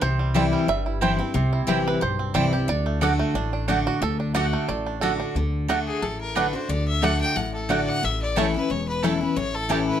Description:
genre	bluegrass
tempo	180 BPM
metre	4/4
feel	swing 54% on 8ths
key	D mixolydian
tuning	A4 = 440 Hz
part	bluegrass banjo	melody	0.0-9.8 s	G3 to F#5	-28 LUFS	right 5 dB	none
part	picked steel-string acoustic guitar	accompaniment	0.0-10.0 s	E2 to F#4	-25 LUFS	left 3 dB	none
part	upright bass	bass	0.0-9.9 s	E1 to D2	-27 LUFS	equal	none
part	mandolin	stabs	0.3-9.8 s	A3 to A5	-27 LUFS	right 6 dB	none
part	clear fiddle	melody	5.9-10.0 s	G4 to G5	-27 LUFS	left 3 dB	none
room	moderate studio reverb, RT60 0.8 s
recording	none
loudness	-21 LUFS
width	side -10 dB against mid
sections	0.0-5.4 A section; 5.4-10.0 B section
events	five-string banjo solo 0.0-5.4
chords	0.0 C; 2.7 D; 8.0 A

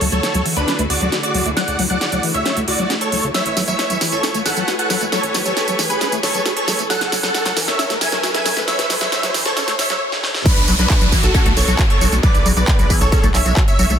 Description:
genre	uplifting trance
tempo	135 BPM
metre	4/4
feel	straight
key	unclear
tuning	A4 = 440 Hz
part	big supersaw lead	melody	0.0-13.9 s	D4 to G#5	-22 LUFS	right 1 dB	cassette tape, sidechain pumping, ping-pong delay
part	plucky unison lead	second line	0.0-13.9 s	A5 to G#6	-26 LUFS	right 1 dB	phaser, ensemble chorus, sidechain pumping
part	clear symphonic string section	sustained chords	0.0-14.0 s	C#3 to G#5	-27 LUFS	left 2 dB	sidechain pumping
part	liquid acid bass	arpeggios	0.0-13.9 s	C#3 to F#4	-25 LUFS	left 2 dB	wide subtle chorus, sidechain pumping, ping-pong delay
part	tight sequencer bass	bass	0.0-14.0 s	F#1 to D2	-22 LUFS	equal	sidechain pumping
part	big-room dance drum kit	drums	0.0-14.0 s	crash cymbal, handclaps, hi-hat, snare drum, tambourine	-21 LUFS	right 2 dB	high-pass filter on snare, high-pass filter on hats, high-pass filter on perc, high-pass filter on cymbals
part	riser and downlifter	sound effects	0.0-14.0 s	none	-26 LUFS	right 1 dB	none
part	electronic kick drum	drums	10.5-13.7 s	none	-16 LUFS	equal	none
room	light reverb, digital ambience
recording	dense, heavily limited modern master, high-pass filter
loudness	-15 LUFS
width	side -8 dB against mid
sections	0.0-10.5 A section; 10.5-14.0 B section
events	build-up 0.0-10.5; drum fill 0.0-10.0, 10.1-10.5; riser 0.0-10.0; filter sweep on acid bass 0.0-10.5; stop 10.0-10.5; drop 10.5-14.0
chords	0.0 Dmaj7; 3.3 Amaj7; 6.9 F#m7; 10.5 Bm

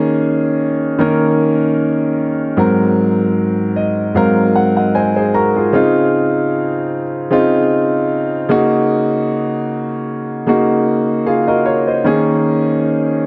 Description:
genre	R&B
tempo	76 BPM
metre	4/4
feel	swing 54% on 16ths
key	Db major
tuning	A4 = 440 Hz
part	clear concert grand piano	solo	0.0-13.3 s	Ab2 to Bb5	-15 LUFS	equal	digital delay
room	moderate lush hall reverb, RT60 2.3 s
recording	none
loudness	-15 LUFS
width	mono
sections	0.0-13.3 A section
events	grand piano fill 3.4-5.7, 10.9-12.1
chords	0.0 Eb7sus4; 2.6 Ab9; 5.7 Dbmaj9; 8.5 Gb6/Db; 12.1 Eb7sus4

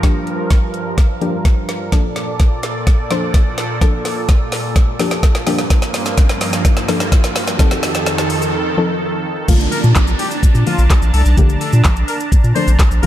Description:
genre	dance-pop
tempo	127 BPM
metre	4/4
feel	straight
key	Bb major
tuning	A4 = 440 Hz
part	soft round pluck	accompaniment	0.0-13.1 s	D3 to C5	-21 LUFS	left 3 dB	chorus, sidechain pumping
part	filtered supersaw swell	sustained chords	0.0-13.1 s	F2 to Bb5	-22 LUFS	right 2 dB	sidechain pumping
part	smooth R&B drum kit	drums	0.0-13.1 s	crash cymbal, handclaps, hi-hat, kick drum, shaker, snare drum	-14 LUFS	equal	none
part	riser and downlifter	sound effects	4.4-13.1 s	none	-26 LUFS	right 1 dB	none
part	saturated sub bass	bass	9.5-13.1 s	G1 to Bb2	-13 LUFS	equal	sidechain pumping
part	clear horn section	melody	9.7-13.1 s	F3 to C5	-24 LUFS	left 2 dB	tape echo
room	light reverb, digital ambience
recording	none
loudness	-13 LUFS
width	side -12 dB against mid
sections	0.0-9.5 A section; 9.5-13.1 B section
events	build-up 0.0-9.5; drum fill 0.0-8.5; riser 4.4-9.5; break 8.5-9.5; drop 9.5-13.1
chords	0.0 Gm7; 1.9 Bbmaj7; 5.5 Gm7; 7.6 F7; 9.5 Bbmaj7

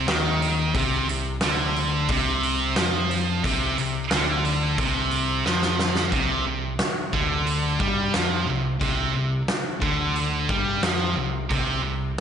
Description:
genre	hard rock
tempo	89 BPM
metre	4/4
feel	straight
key	C minor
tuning	A4 = 443 Hz
part	scooped high-gain guitar	riff	0.0-12.1 s	C3 to G3	-26 LUFS	right 8 dB	distortion
part	sludgy distorted guitar	riff	0.0-12.1 s	C3 to G3	-27 LUFS	left 6 dB	overdrive
part	overdriven picked electric bass	bass	0.0-12.1 s	C2 to G2	-30 LUFS	equal	none
part	huge arena drum kit	drums	0.1-11.7 s	hi-hat, kick drum, snare drum	-27 LUFS	equal	none
room	moderate concert hall reverb, RT60 1.8 s, studio reverb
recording	big arena sound, nothing above 10.6 kHz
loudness	-21 LUFS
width	side -8 dB against mid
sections	0.0-6.1 A section; 6.1-12.2 B section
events	drum fill 5.4-6.1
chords	0.0 Cm; 6.1 C5

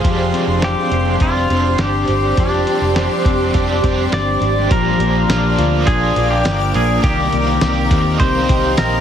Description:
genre	dream pop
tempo	103 BPM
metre	4/4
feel	straight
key	unclear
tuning	A4 = 439 Hz
part	overdriven electric guitar	accompaniment	0.0-9.0 s	Bb2 to G4	-24 LUFS	right 5 dB	tremolo, analog chorus
part	granular cloud pad	sustained chords	0.0-9.0 s	G4 to D6	-21 LUFS	right 1 dB	built-in reverb
part	mellow electric guitar	arpeggios	0.0-9.0 s	Eb3 to G4	-21 LUFS	left 5 dB	lush chorus, ping-pong delay
part	vintage muted fingered electric bass	bass	0.0-9.0 s	F1 to Eb2	-20 LUFS	equal	none
part	lo-fi sampler-style drum kit	drums	0.0-8.9 s	hi-hat, kick drum, snare drum, tambourine	-19 LUFS	equal	none
part	pedal steel guitar	melody	0.6-9.0 s	D4 to D5	-20 LUFS	left 1 dB	ping-pong delay
room	light reverb, digital ambience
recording	heavily compressed radio sound, multiband compression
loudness	-13 LUFS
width	side -9 dB against mid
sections	0.0-4.7 A section; 4.7-9.0 B section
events	none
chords	0.0 Csus2/F; 4.7 Bb; 7.0 Cm7

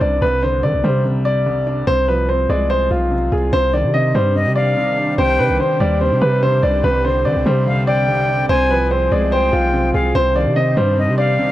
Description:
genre	hip hop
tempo	145 BPM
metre	4/4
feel	half-time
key	C harmonic minor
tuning	A4 = 440 Hz
part	dark baby grand piano	melody	0.0-11.5 s	F4 to Eb5	-18 LUFS	equal	analog delay
part	dark grand piano	accompaniment	0.0-11.5 s	C2 to F4	-22 LUFS	equal	none
part	long sustained 808-style bass	bass	0.0-11.4 s	B1 to Eb3	-19 LUFS	equal	none
part	warm analog pad	sustained chords	3.5-11.5 s	D3 to C5	-27 LUFS	equal	chorus
part	reedy silver concert flute	second line	4.4-11.5 s	Eb5 to Ab5	-22 LUFS	left 1 dB	analog delay
room	light reverb, studio reverb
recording	dry, gritty hardware recording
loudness	-14 LUFS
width	side -14 dB against mid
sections	0.0-3.5 A section; 3.5-11.5 B section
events	none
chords	0.0 Cmadd9; 1.9 Fm/C; 3.5 Cmadd9; 8.5 Fm/C; 10.1 Cmadd9

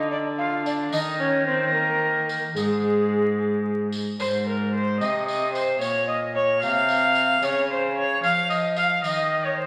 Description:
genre	classical, renaissance-style consort dance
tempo	74 BPM (dotted quarters)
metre	6/8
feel	straight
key	Ab major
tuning	A4 = 440 Hz
part	mellow hollow alto recorder	melody	0.0-9.7 s	Ab4 to F5	-29 LUFS	equal	none
part	rich viola	second line	0.0-9.7 s	Ab3 to F5	-27 LUFS	equal	none
part	warm cello	bass	0.0-9.7 s	Ab2 to F3	-28 LUFS	equal	none
part	tambourine	percussion	0.7-9.3 s	none	-40 LUFS	equal	none
room	wet stone room reverb, RT60 1.3 s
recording	vinyl crackle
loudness	-23 LUFS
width	mono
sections	0.0-4.2 A section; 4.2-9.7 B section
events	none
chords	0.0 Dm; 0.9 Eb5; 2.6 N.C.; 4.2 Ab; 5.8 Bb5; 7.4 Db; 9.0 Eb5

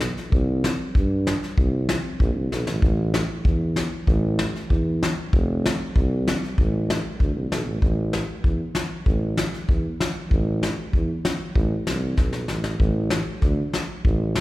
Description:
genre	klezmer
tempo	96 BPM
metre	2/4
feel	straight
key	A minor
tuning	A4 = 437 Hz
part	mellow tuba	bass	0.0-14.4 s	F1 to G2	-24 LUFS	right 1 dB	none
part	soft brush drum kit	drums	0.0-14.4 s	kick drum, snare drum	-23 LUFS	equal	none
room	moderate recital hall reverb, RT60 1.6 s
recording	heard from further back in the room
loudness	-21 LUFS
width	side -18 dB against mid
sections	0.0-7.8 A section; 7.8-14.4 B section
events	drum fill 2.5-2.8, 12.2-12.8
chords	none

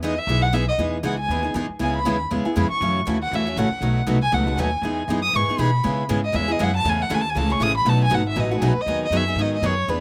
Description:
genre	acoustic string swing (jazz manouche)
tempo	238 BPM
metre	4/4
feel	swing 57% on 8ths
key	E major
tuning	A4 = 440 Hz
part	dark violin	melody	0.0-10.0 s	G#4 to D#6	-26 LUFS	equal	none
part	picked steel-string acoustic guitar	accompaniment	0.0-10.0 s	B2 to G#4	-27 LUFS	equal	none
part	picked steel-string acoustic guitar	accompaniment	0.0-10.0 s	B2 to B4	-34 LUFS	equal	slapback echo
part	upright bass	bass	0.0-10.0 s	G#1 to C#3	-26 LUFS	equal	none
room	little or no reverb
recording	recorded outdoors, with no room sound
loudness	-22 LUFS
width	mono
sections	0.8-8.9 A section; 8.9-10.0 B section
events	violin solo 0.0-8.9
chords	0.0 Emaj7; 1.8 C#m7; 2.8 F#m7; 3.8 B7; 4.8 Emaj7; 5.8 C#m7; 6.9 Amaj7; 7.9 B7; 8.9 G#m7

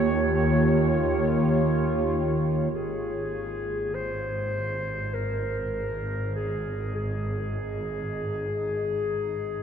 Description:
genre	ambient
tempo	free time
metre	none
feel	none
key	Ab major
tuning	A4 = 440 Hz
part	mellow clarinet	melody	0.0-9.6 s	Ab4 to Db5	-30 LUFS	left 1 dB	tape echo
part	warbly tape-like pad	sustained chords	0.0-9.6 s	Eb3 to Eb5	-26 LUFS	right 1 dB	chorus, built-in reverb
part	clear studio double bass section	bass	0.0-9.6 s	Ab1 to Eb2	-32 LUFS	equal	none
part	wind-like tuned noise texture	texture	0.7-2.8 s	Bb5	-62 LUFS	right 1 dB	none
room	wet huge ambient reverb, RT60 7.5 s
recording	dreamy mix soaked in reverb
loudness	-24 LUFS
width	side -8 dB against mid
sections	0.0-2.7 A section; 2.7-9.6 B section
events	filter sweep on ambient pad 0.0-2.7; fade-in on ambient pad 2.7-9.6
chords	0.0 Eb7; 2.7 Ab5

